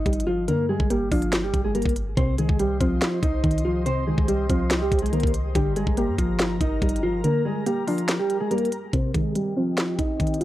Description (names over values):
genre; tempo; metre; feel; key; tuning
hip hop, trap; 142 BPM; 4/4; half-time; C minor; A4 = 443 Hz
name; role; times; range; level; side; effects
mellow electric guitar; melody; 0.0-10.4 s; F3 to Eb5; -25 LUFS; equal; phaser, low-pass filter, tape echo
soft round pluck; accompaniment; 0.0-10.4 s; C3 to D4; -27 LUFS; equal; chorus, low-pass filter
clean 808-style bass; bass; 0.0-7.2 s; G1 to G2; -28 LUFS; equal; none
trap drum kit; drums; 0.1-10.4 s; finger snaps, hi-hat, kick drum, snare drum; -25 LUFS; equal; none
glassy FM pad; sustained chords; 2.2-10.4 s; C4 to C6; -35 LUFS; left 2 dB; ensemble chorus, built-in reverb, low-pass filter
room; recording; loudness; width
little or no reverb; dry, gritty hardware recording, cassette tape; -21 LUFS; side -14 dB against mid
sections
0.0-8.9 A section; 8.9-10.4 B section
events
kick muted 7.2-8.9; filter sweep 8.9-10.4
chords
0.0 Gm; 2.2 Cm; 5.6 Gm; 8.9 Cm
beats
0.06 | 0.48 0.90 1.33 1.75 | 2.17 2.59 3.02 3.44 | 3.86 4.28 4.71 5.13 | 5.55 5.97 6.40 6.82 | 7.24 7.66 8.09 8.51 | 8.93 9.35 9.78 10.20